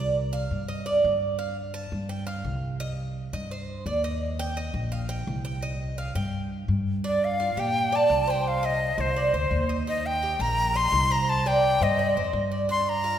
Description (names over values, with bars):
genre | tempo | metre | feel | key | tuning
latin, Cuban son and guajira | 170 BPM | 4/4 | straight | unclear | A4 = 440 Hz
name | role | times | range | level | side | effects
Cuban tres | arpeggios | 0.0-13.2 s | D4 to A5 | -28 LUFS | right 2 dB | none
upright bass | bass | 0.0-13.2 s | Bb1 to Bb2 | -29 LUFS | equal | none
breathy bright jazz flute | melody | 7.1-13.2 s | C5 to C6 | -25 LUFS | left 2 dB | none
room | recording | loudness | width
wet concert hall reverb, RT60 2.3 s | recorded in a church or concert hall | -24 LUFS | side -10 dB against mid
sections
0.0-7.0 A section; 7.0-13.2 B section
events
Cuban tres solo 0.0-7.0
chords
0.0 Csus2; 2.8 Cm; 4.2 Eb; 5.6 Cm; 7.0 Gm7; 8.5 Cmadd9; 9.9 Eb; 11.3 Cmadd9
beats
0.34 0.69 1.04 | 1.40 1.75 2.10 2.46 | 2.81 3.16 3.51 3.87 | 4.22 4.57 4.93 5.28 | 5.63 5.99 6.34 6.69 | 7.05 7.40 7.75 8.11 | 8.46 8.81 9.16 9.52 | 9.87 10.22 10.58 10.93 | 11.29 11.64 11.99 12.35 | 12.70 13.05